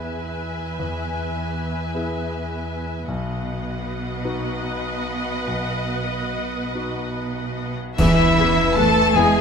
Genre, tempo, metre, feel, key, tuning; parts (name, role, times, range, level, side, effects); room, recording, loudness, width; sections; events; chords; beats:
cinematic, emotional film score for orchestra; 47-53 BPM (dotted quarters); 6/8; rubato; E major; A4 = 440 Hz
rich symphonic violin section; melody; 0.0-9.4 s; E5 to A5; -29 LUFS; left 3 dB
warm symphonic violin section; second line; 0.0-9.4 s; E4 to E5; -30 LUFS; left 3 dB
clear concert grand piano; accompaniment; 0.0-9.4 s; B1 to G#4; -27 LUFS; equal
rich symphonic viola section; accompaniment; 0.0-9.3 s; B3 to B4; -32 LUFS; right 1 dB
rich symphonic cello section; bass; 0.0-9.4 s; E2 to A3; -26 LUFS; right 4 dB
cymbal swell, clash cymbals and concert bass drum; percussion; 5.5-9.4 s; -28 LUFS; equal
clear clarinet; second line; 8.0-9.4 s; E4 to A4; -26 LUFS; left 2 dB
mellow flute section; second line; 8.0-9.4 s; E5 to A5; -24 LUFS; left 2 dB
mellow oboe; second line; 8.0-9.4 s; E5 to A5; -25 LUFS; right 1 dB
dark French horn section; sustained chords; 8.0-9.4 s; E4 to B4; -24 LUFS; left 10 dB
rich symphonic double bass section; bass; 8.0-9.2 s; E2; -26 LUFS; right 2 dB
timpani; percussion; 8.0-9.1 s; E2; -28 LUFS; left 1 dB
moderate concert hall reverb, RT60 2.0 s; -20 LUFS; side -6 dB against mid
0.0-8.0 A section; 8.0-9.4 B section
band accent 8.0-8.8
0.0 E; 3.1 B; 8.0 E
| 0.80 1.95 | 3.08 4.24 | 5.47 6.73 | 7.99 9.15